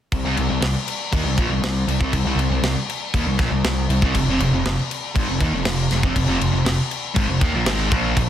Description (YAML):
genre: hard rock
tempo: 119 BPM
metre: 4/4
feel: straight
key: unclear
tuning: A4 = 441 Hz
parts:
  - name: sludgy distorted guitar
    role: riff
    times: 0.1-8.3 s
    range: F2 to Bb3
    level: -21 LUFS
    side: equal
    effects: overdrive
  - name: growling picked electric bass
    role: bass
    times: 0.1-8.3 s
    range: F1 to Eb2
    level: -24 LUFS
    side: equal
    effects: overdrive
  - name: tight metal drum kit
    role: drums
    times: 0.1-8.3 s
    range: crash cymbal, kick drum, snare drum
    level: -22 LUFS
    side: left 1 dB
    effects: none
room: light reverb, small room ambience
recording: dense, heavily limited modern master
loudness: -18 LUFS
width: side -10 dB against mid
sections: 0.1-8.3 A section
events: none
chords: 0.1 C5; 4.1 F5